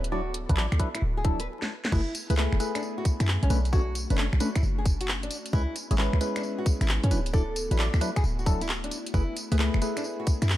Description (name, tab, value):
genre	UK garage, two-step garage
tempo	133 BPM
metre	4/4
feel	swing 67% on 16ths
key	F# minor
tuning	A4 = 440 Hz
part	airy breathy pad	sustained chords	0.0-10.6 s	A3 to A4	-40 LUFS	left 1 dB	chorus, vintage 12-bit sampler grit, sidechain pumping
part	short 808-style bass	bass	0.0-10.6 s	D1 to F#2	-26 LUFS	equal	tube saturation
part	garage drum kit	drums	0.0-10.6 s	crash cymbal, finger snaps, handclaps, hi-hat, snare drum, tambourine	-33 LUFS	equal	none
part	nylon-string guitar	melody	0.1-10.5 s	C#4 to B4	-36 LUFS	equal	ping-pong delay
part	percussive organ stab	stabs	0.1-10.6 s	F#3 to D5	-32 LUFS	left 1 dB	chorus, phaser, ping-pong delay
part	electronic kick drum	drums	0.5-10.4 s	none	-24 LUFS	equal	none
room	light reverb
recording	vinyl crackle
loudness	-24 LUFS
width	side -14 dB against mid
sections	0.0-1.9 A section; 1.9-10.6 B section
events	stop 1.5-1.9; drum fill 1.6-1.9; drop 1.9-10.6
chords	0.0 D69; 1.9 F#m11; 3.5 Bm9; 5.5 C#m7; 7.1 D69; 9.1 F#m11